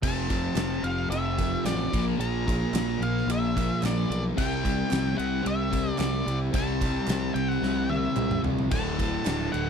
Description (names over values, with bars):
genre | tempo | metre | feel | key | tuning
classic rock | 111 BPM | 4/4 | straight | unclear | A4 = 444 Hz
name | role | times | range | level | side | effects
octave-fuzz lead guitar | melody | 0.0-9.7 s | D5 to Bb5 | -33 LUFS | left 1 dB | distortion
cranked stack guitar | riff | 0.0-9.7 s | D2 to C4 | -32 LUFS | equal | overdrive, phaser
overdriven semi-hollow guitar | riff | 0.0-9.7 s | D2 to C4 | -29 LUFS | left 1 dB | none
growling fingered electric bass | bass | 0.0-9.7 s | D1 to C2 | -31 LUFS | equal | overdrive
gated 80s drum kit | drums | 0.0-9.7 s | crash cymbal, kick drum, ride cymbal, snare drum, toms | -31 LUFS | right 1 dB | none
group handclap | percussion | 0.6-9.4 s | none | -41 LUFS | right 18 dB | none
room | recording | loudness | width
little or no reverb | none | -24 LUFS | side -7 dB against mid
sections
0.0-9.7 A section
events
drum fill 7.6-8.7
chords
0.0 F; 1.9 Bb5; 4.4 C; 8.7 D5